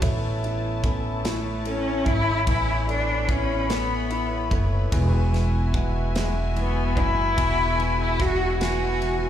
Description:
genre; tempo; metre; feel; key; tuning
six-eight pop ballad; 49 BPM (dotted quarters); 6/8; straight; A major; A4 = 441 Hz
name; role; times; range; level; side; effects
warm concert grand piano; accompaniment; 0.0-9.3 s; B2 to E4; -32 LUFS; left 2 dB; plate reverb, slapback echo
warm studio string section; sustained chords; 0.0-9.3 s; E4 to B5; -32 LUFS; left 4 dB; plate reverb
direct-recorded clean electric guitar; arpeggios; 0.0-9.3 s; E2 to E4; -34 LUFS; right 3 dB; phaser, plate reverb, slapback echo
upright bass; bass; 0.0-9.3 s; E1 to A1; -25 LUFS; equal; none
modern studio drum kit; drums; 0.0-9.2 s; kick drum, ride cymbal, snare drum; -29 LUFS; equal; none
clear cello; melody; 1.3-9.3 s; G#3 to F#4; -25 LUFS; left 2 dB; plate reverb, slapback echo, ping-pong delay
room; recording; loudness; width
light reverb; live gig heard through the venue's PA, club reverb; -21 LUFS; side -10 dB against mid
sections
0.0-9.3 A section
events
none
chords
0.0 Aadd9; 4.9 Eadd9

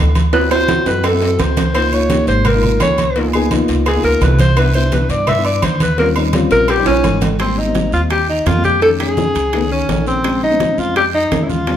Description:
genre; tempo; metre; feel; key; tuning
Afro-Cuban jazz; 170 BPM; 4/4; straight; Ab major; A4 = 440 Hz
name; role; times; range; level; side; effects
dark upright piano; accompaniment; 0.0-11.8 s; Db3 to C5; -20 LUFS; left 3 dB; none
upright bass; bass; 0.0-11.8 s; Ab1 to G2; -18 LUFS; equal; none
agogo bells and timbales; percussion; 0.2-11.8 s; none; -23 LUFS; right 6 dB; none
congas; percussion; 0.2-11.8 s; none; -22 LUFS; right 1 dB; none
cowbell and bongos; percussion; 0.2-11.8 s; none; -27 LUFS; left 4 dB; none
guiro; percussion; 0.2-11.8 s; none; -32 LUFS; right 7 dB; none
warm alto saxophone; melody; 0.3-11.8 s; C4 to E5; -16 LUFS; left 1 dB; none
claves; percussion; 0.5-11.5 s; none; -34 LUFS; left 6 dB; none
room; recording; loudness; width
moderate large studio reverb, RT60 1.2 s; band playing live in one room; -12 LUFS; side -10 dB against mid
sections
0.0-7.4 A section; 7.4-11.8 B section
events
alto saxophone solo 0.0-7.4; drum fill 0.3-1.7, 6.9-7.4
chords
0.3 D9; 1.7 Db69; 3.2 Db13; 4.6 Cmaj9; 6.0 Eb13; 7.4 Abmaj7; 8.8 F7alt; 10.2 Bbm9

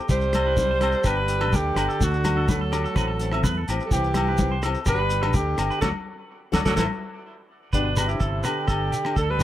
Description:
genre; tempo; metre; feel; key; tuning
highlife guitar band; 126 BPM; 4/4; straight; G major; A4 = 444 Hz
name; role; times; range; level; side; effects
clean electric guitar; arpeggios; 0.0-9.4 s; E4 to E5; -31 LUFS; right 3 dB; none
breathy alto saxophone; melody; 0.1-9.4 s; D4 to C5; -26 LUFS; equal; none
breathy tenor saxophone; second line; 0.1-9.4 s; B2 to G3; -32 LUFS; right 4 dB; none
flamenco guitar; accompaniment; 0.1-9.4 s; E3 to G4; -33 LUFS; left 7 dB; none
fingered electric bass; bass; 0.1-9.4 s; G1 to E2; -26 LUFS; equal; none
cloth-damped thuddy drum kit; drums; 0.1-9.3 s; hi-hat, kick drum, rim click, snare drum; -27 LUFS; equal; none
congas; percussion; 0.1-6.9 s; none; -30 LUFS; left 3 dB; none
shekere; percussion; 0.1-9.4 s; none; -31 LUFS; left 1 dB; none
agogo bells; percussion; 0.4-9.4 s; none; -33 LUFS; left 6 dB; none
room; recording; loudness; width
light reverb, small room ambience; none; -21 LUFS; side -13 dB against mid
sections
0.0-7.7 A section; 7.7-9.4 B section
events
band accent 5.8-7.7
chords
0.1 C; 1.1 G; 2.0 D; 3.0 Am; 3.9 C; 4.9 G; 5.8 D; 6.8 N.C.; 7.7 G

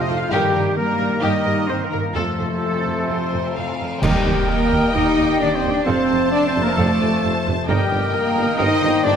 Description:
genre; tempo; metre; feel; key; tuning
cinematic, heroic adventure film score; 131 BPM; 4/4; straight; Eb lydian; A4 = 440 Hz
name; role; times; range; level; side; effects
bright small flute group; second line; 0.0-8.8 s; G4 to F5; -32 LUFS; equal; none
clear clarinet; second line; 0.0-9.2 s; G4 to F5; -29 LUFS; left 2 dB; none
clear oboe; second line; 0.0-8.7 s; G4 to F5; -31 LUFS; right 2 dB; none
warm symphonic violin section; second line; 0.0-9.2 s; G4 to F5; -29 LUFS; left 3 dB; none
bright trombone section; sustained chords; 0.0-9.2 s; C3 to Bb3; -30 LUFS; right 3 dB; none
mellow French horn section; sustained chords; 0.0-9.2 s; G3 to F4; -24 LUFS; left 3 dB; none
concert harp; arpeggios; 0.0-9.2 s; F2 to Eb4; -30 LUFS; left 7 dB; none
clear trumpet; stabs; 0.0-9.2 s; G4 to Eb5; -27 LUFS; right 2 dB; none
dark symphonic cello section; bass; 0.0-9.2 s; C3 to Eb4; -25 LUFS; right 3 dB; none
rich symphonic violin section; melody; 0.1-9.2 s; G4 to A5; -26 LUFS; left 4 dB; none
warm symphonic viola section; accompaniment; 0.1-9.2 s; C4 to Eb5; -30 LUFS; right 1 dB; none
rich symphonic double bass section; bass; 0.1-9.1 s; Eb2 to G2; -26 LUFS; right 3 dB; none
cymbal swell, clash cymbals and concert bass drum; percussion; 0.3-4.9 s; none; -28 LUFS; equal; none
mellow tuba; bass; 4.0-9.1 s; F1 to Eb2; -27 LUFS; right 4 dB; none
timpani; percussion; 4.0-4.7 s; Eb3; -27 LUFS; equal; none
room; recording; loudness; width
wet scoring stage reverb, RT60 1.4 s; none; -17 LUFS; side -8 dB against mid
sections
0.0-4.0 A section; 4.0-9.2 B section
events
band accent 4.0-4.5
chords
0.3 Eb/G; 2.1 F; 4.0 Eb; 5.9 F; 7.7 Eb/G

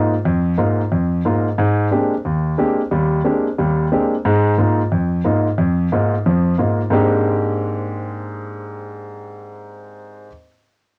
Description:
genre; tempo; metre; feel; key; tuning
jazz; 180 BPM; 4/4; swing 64% on 8ths; Ab lydian; A4 = 440 Hz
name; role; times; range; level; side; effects
warm baby grand piano; solo; 0.0-10.3 s; Eb2 to G4; -19 LUFS; equal; none
room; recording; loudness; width
wet booth ambience, RT60 0.2 s; home recording on cassette; -18 LUFS; mono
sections
0.0-6.9 A section; 6.9-9.6 B section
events
none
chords
0.0 Bbsus4; 1.6 Abmaj9#11; 4.2 Bbsus4; 6.9 Abmaj9#11

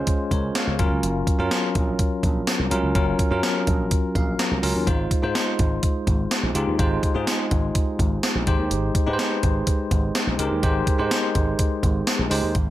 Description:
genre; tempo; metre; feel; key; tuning
1980s-style pop; 125 BPM; 4/4; straight; unclear; A4 = 440 Hz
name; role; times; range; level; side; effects
bell-like tine electric piano; accompaniment; 0.0-12.6 s; Gb3 to Bb5; -24 LUFS; left 1 dB; slow stereo tremolo
gated 80s digital drum machine; drums; 0.1-12.7 s; hi-hat, kick drum, snare drum, tambourine; -23 LUFS; equal; gated reverb, gated reverb snare
slap bass with an envelope filter; bass; 0.3-12.7 s; Gb1 to Ab2; -26 LUFS; equal; none
room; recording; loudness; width
light reverb, digital ambience; none; -20 LUFS; side -14 dB against mid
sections
0.0-12.6 A section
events
tine electric piano fill 3.9-4.9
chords
0.0 Dbmaj7; 0.8 Gbmaj7; 4.9 Fm7/Ab; 8.5 Abmaj7

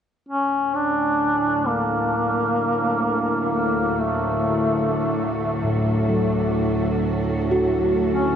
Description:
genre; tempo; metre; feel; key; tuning
dark ambient drone; 65 BPM; 4/4; straight; D major; A4 = 441 Hz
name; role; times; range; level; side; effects
warm duduk; melody; 0.3-8.4 s; A3 to D4; -22 LUFS; equal; diffuse ambient delay
rich studio cello section; sustained chords; 0.3-8.4 s; D3 to A4; -32 LUFS; right 1 dB; none
bowed-like drone; drone; 0.9-8.4 s; D2 to A2; -24 LUFS; equal; built-in reverb
gamelan-type bossed gongs; arpeggios; 5.6-8.4 s; A2 to F#4; -23 LUFS; equal; diffuse ambient delay
room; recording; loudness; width
wet cathedral reverb, RT60 5.4 s; nothing above 10.4 kHz; -19 LUFS; side -8 dB against mid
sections
0.3-8.4 A section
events
fade-in on cello section 0.3-8.4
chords
0.3 D

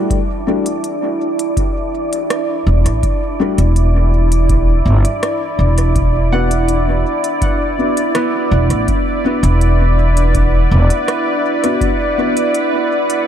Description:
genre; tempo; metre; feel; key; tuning
ambient dub; 82 BPM; 4/4; straight; E minor; A4 = 440 Hz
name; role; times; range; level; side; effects
deep dark ambient pad; sustained chords; 0.0-13.3 s; E4 to A5; -18 LUFS; right 2 dB; chorus, built-in reverb
dark upright piano; stabs; 0.0-12.3 s; G3 to F#4; -22 LUFS; left 5 dB; lush chorus, dub echo
wind-like tuned noise texture; texture; 0.0-13.3 s; D4 to D5; -26 LUFS; left 1 dB; built-in reverb, analog chorus
electronic kick drum; drums; 0.1-12.0 s; none; -19 LUFS; equal; studio ambience
organic electronic drum kit; drums; 0.1-13.2 s; hi-hat, rim click; -27 LUFS; right 1 dB; overdrive, studio ambience, dub echo
upright bass; bass; 2.7-10.9 s; E1 to A1; -12 LUFS; equal; tube saturation
concert harp; arpeggios; 6.3-11.3 s; B3 to F#5; -27 LUFS; right 1 dB; diffuse ambient delay
room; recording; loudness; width
light reverb, small room ambience; none; -13 LUFS; side -10 dB against mid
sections
0.0-13.3 A section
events
none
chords
0.0 Em11; 6.0 Bm/E

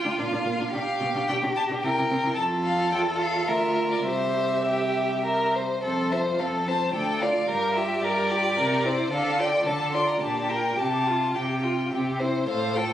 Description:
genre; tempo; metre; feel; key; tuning
quick classical-period movement for string quartet; 101-112 BPM; 3/4; rubato; F major; A4 = 441 Hz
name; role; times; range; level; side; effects
rich violin; melody; 0.0-12.9 s; C5 to C6; -28 LUFS; left 2 dB; none
rich violin; second line; 0.0-12.9 s; F4 to D5; -26 LUFS; left 1 dB; none
warm viola; accompaniment; 0.0-12.9 s; Bb3 to A4; -31 LUFS; right 2 dB; none
rich cello; bass; 0.0-12.9 s; C2 to D3; -30 LUFS; right 1 dB; none
room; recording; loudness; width
moderate recital hall reverb, RT60 1.4 s; recorded on a phone in the room, club reverb, compression; -22 LUFS; side -11 dB against mid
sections
0.0-5.8 A section; 5.8-12.9 B section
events
none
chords
0.2 Bb; 0.7 G7/B; 1.8 C7; 2.4 F; 3.5 Bb/D; 4.1 C; 5.8 F; 6.9 Dm; 7.5 Gm7; 8.6 C7; 9.1 Dm; 10.2 Gm7/Bb; 10.8 Csus4; 11.9 C

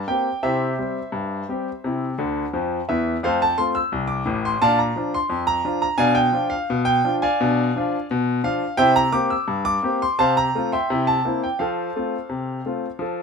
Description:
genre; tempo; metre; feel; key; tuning
ragtime piano; 86 BPM; 2/4; straight; F major; A4 = 440 Hz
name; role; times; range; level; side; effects
bright grand piano; solo; 0.0-13.2 s; A1 to E6; -19 LUFS; equal; none
room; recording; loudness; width
light reverb; minimal, uncompressed stereo recording; -19 LUFS; side -5 dB against mid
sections
0.0-13.2 A section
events
grand piano fill 2.2-3.2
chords
0.4 C; 3.2 F; 4.6 Bb; 6.0 Bdim7; 8.8 C7; 10.2 F/C; 10.9 C7; 11.6 F

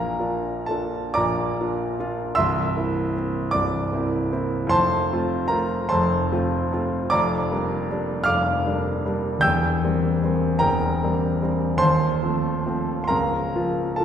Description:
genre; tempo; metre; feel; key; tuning
classical, romantic nocturne for solo piano; 51 BPM (dotted quarters); 6/8; uneven beats, rubato; F major; A4 = 440 Hz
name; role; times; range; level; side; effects
warm concert grand piano; solo; 0.0-14.0 s; C1 to G6; -20 LUFS; equal; none
room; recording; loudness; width
wet concert hall reverb, RT60 1.9 s; heard from further back in the room; -20 LUFS; side -8 dB against mid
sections
0.0-14.0 A section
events
none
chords
0.0 Bb; 2.4 C7; 4.7 F; 7.1 Gm7/F; 9.5 C7/E; 11.8 F7/Eb; 13.1 Bbm/Db

